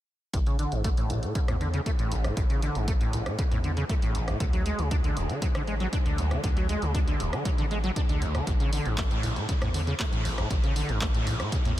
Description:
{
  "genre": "acid house",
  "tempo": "118 BPM",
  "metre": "4/4",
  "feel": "straight",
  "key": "A major",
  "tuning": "A4 = 443 Hz",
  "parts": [
    { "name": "acid bass, saw", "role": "riff", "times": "0.3-11.8 s", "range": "A1 to D4", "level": "-30 LUFS", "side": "equal", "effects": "tube saturation, ensemble chorus, cassette tape, diffuse ambient delay" },
    { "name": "saturated sub bass", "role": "bass", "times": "0.3-11.8 s", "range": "D1 to A2", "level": "-30 LUFS", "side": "equal", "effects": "sidechain pumping" },
    { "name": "electronic kick drum", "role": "drums", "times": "0.3-11.6 s", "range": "none", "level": "-27 LUFS", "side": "equal", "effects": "none" },
    { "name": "punchy analog drum machine", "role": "drums", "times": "0.3-11.8 s", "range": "handclaps, hi-hat, rim click", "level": "-36 LUFS", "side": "equal", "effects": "none" }
  ],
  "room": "light reverb",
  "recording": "none",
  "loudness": "-25 LUFS",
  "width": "side -14 dB against mid",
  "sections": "0.3-11.8 A section",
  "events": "none",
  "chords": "0.3 A5; 4.4 D5; 8.5 A5"
}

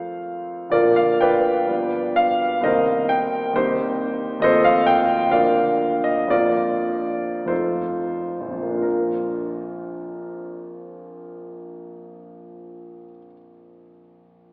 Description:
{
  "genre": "classical, romantic character piece for solo piano",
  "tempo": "42-70 BPM",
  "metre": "2/4",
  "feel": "rubato",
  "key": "Bb major",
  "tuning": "A4 = 440 Hz",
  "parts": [
    { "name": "warm concert grand piano", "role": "solo", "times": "0.0-14.5 s", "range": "Bb1 to G5", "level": "-19 LUFS", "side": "equal", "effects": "none" }
  ],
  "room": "wet church reverb, RT60 3.1 s",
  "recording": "recorded in a church or concert hall, AM radio sound",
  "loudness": "-18 LUFS",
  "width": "side -31 dB against mid",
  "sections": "0.0-8.8 A section; 8.8-14.1 B section",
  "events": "slowing down 3.6-8.8",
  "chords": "0.0 F; 0.7 Bb/D; 1.7 G7; 2.6 Cm7; 3.6 Cm/Eb; 4.4 F7/Eb; 5.3 Bb/D; 6.3 Bb/F; 7.5 F7; 8.8 Bb"
}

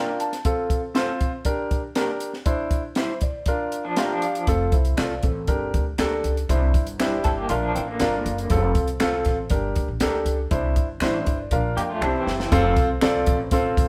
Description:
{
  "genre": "uptempo 1960s-style soul",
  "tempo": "119 BPM",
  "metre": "4/4",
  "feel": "straight",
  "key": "F major",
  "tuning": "A4 = 440 Hz",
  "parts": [
    { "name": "warm grand piano", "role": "accompaniment", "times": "0.0-13.9 s", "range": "C4 to Bb5", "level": "-27 LUFS", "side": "equal", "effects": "none" },
    { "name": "electric guitar through a small old amp", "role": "stabs", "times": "0.0-12.2 s", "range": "G3 to C5", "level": "-33 LUFS", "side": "equal", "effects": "none" },
    { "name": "compact cocktail drum kit", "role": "drums", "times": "0.2-13.9 s", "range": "hi-hat, kick drum, snare drum", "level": "-27 LUFS", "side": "equal", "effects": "none" },
    { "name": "electric guitar through a small old amp", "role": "riff", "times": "3.8-8.5, 11.8-12.5 s", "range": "D3 to A4", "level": "-30 LUFS", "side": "equal", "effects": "tremolo" },
    { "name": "upright bass", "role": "bass", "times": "4.5-13.9 s", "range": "F1 to F2", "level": "-28 LUFS", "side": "equal", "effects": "none" },
    { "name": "finger snaps", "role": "percussion", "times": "5.0-13.1 s", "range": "none", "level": "-36 LUFS", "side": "equal", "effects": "none" }
  ],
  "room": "moderate stone room reverb, RT60 1.1 s",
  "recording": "band playing live in one room",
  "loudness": "-23 LUFS",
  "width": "mono",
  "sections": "0.0-12.5 A section; 12.5-13.9 B section",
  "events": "grand piano fill 0.0-0.4, 3.7-4.5, 11.0-12.5; drum fill 12.0-12.5",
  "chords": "0.4 F; 1.5 Gm; 2.5 Cadd9; 3.5 Bb; 4.5 F; 5.5 Gm; 6.5 Cadd9; 7.5 Bb; 8.5 F; 9.5 Gm; 10.5 Cadd9; 11.5 Bb; 12.0 C; 12.5 F"
}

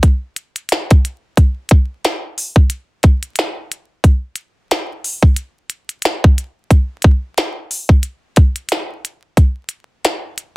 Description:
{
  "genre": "hip hop",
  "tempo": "90 BPM",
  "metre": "4/4",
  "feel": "swing 56% on 16ths",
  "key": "none",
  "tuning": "none",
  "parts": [
    { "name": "minimal click drum kit", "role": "drums", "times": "0.0-10.5 s", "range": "hi-hat, kick drum, snare drum", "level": "-12 LUFS", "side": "equal", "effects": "soft clipping on snare" }
  ],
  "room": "little or no reverb",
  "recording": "dense, heavily limited modern master, vinyl crackle",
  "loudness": "-14 LUFS",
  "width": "side -22 dB against mid",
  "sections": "0.0-10.6 A section",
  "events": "none",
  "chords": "none"
}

